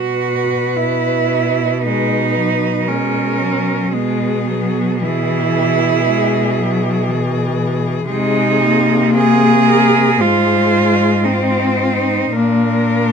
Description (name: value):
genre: classical, lyrical piece for cello ensemble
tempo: 54-60 BPM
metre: 4/4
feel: rubato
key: unclear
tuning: A4 = 440 Hz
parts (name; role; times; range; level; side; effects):
- rich cello; melody; 0.0-13.1 s; G#4 to C5; -22 LUFS; left 7 dB; none
- rich cello; second line; 0.0-13.1 s; B3 to Ab4; -17 LUFS; right 8 dB; none
- rich cello; bass; 0.0-13.1 s; Ab2 to C3; -20 LUFS; right 1 dB; none
- warm cello; accompaniment; 1.8-13.1 s; E3 to C4; -18 LUFS; left 5 dB; none
room: little or no reverb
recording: close, detailed microphones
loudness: -13 LUFS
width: side -6 dB against mid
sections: 0.0-13.1 A section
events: none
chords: 0.0 B; 3.9 E/B; 8.1 Ab/C; 10.2 Ab; 12.3 Bb